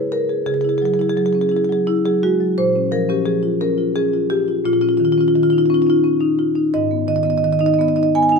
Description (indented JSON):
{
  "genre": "classical, contemporary piece for solo marimba",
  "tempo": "86 BPM",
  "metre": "3/4",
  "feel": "straight",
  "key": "unclear",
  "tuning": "A4 = 438 Hz",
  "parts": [
    { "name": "marimba with medium mallets", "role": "solo", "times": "0.0-8.4 s", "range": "G#2 to G#5", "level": "-15 LUFS", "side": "equal", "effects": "none" }
  ],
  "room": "moderate stone room reverb, RT60 1.1 s",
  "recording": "none",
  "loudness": "-15 LUFS",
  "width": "side -4 dB against mid",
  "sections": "0.0-8.4 A section",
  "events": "none",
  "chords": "0.5 Eadd9/C#; 2.6 A#m; 4.7 C#add9/A#; 6.7 G#m"
}